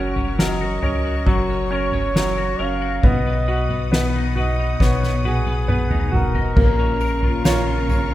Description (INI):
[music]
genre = pop ballad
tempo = 68 BPM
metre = 4/4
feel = straight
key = F# major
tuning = A4 = 442 Hz
[part]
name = warm flugelhorn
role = melody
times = 0.0-8.1 s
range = F#4 to E#5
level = -26 LUFS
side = equal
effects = none
[part]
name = bright grand piano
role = accompaniment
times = 0.0-8.1 s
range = F#3 to C#5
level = -24 LUFS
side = right 1 dB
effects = none
[part]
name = clear studio string section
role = sustained chords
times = 0.0-8.1 s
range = B3 to D#6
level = -36 LUFS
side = left 2 dB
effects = none
[part]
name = twelve-string electric guitar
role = arpeggios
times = 0.0-8.1 s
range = A#2 to B4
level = -26 LUFS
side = left 5 dB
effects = ensemble chorus
[part]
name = warm sub bass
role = bass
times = 0.0-8.1 s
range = E#1 to C#2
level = -24 LUFS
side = equal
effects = none
[part]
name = soft-mallet drum kit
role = drums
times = 0.2-8.1 s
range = crash cymbal, kick drum, snare drum, toms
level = -21 LUFS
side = equal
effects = none
[part]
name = dark studio cello section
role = second line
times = 6.6-8.1 s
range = C#3 to C#4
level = -29 LUFS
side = right 3 dB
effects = none
[part]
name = tambourine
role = percussion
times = 7.0-8.1 s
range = none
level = -42 LUFS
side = right 10 dB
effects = none
[sound]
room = light reverb, studio reverb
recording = rough home demo mix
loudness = -17 LUFS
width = side -14 dB against mid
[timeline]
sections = 0.0-6.6 A section; 6.6-8.1 B section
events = drum fill 4.8-6.6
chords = 0.0 F#; 3.0 B; 6.6 A#m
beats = 0.39 1.27 2.15 | 3.04 3.92 4.80 5.68 | 6.57 7.45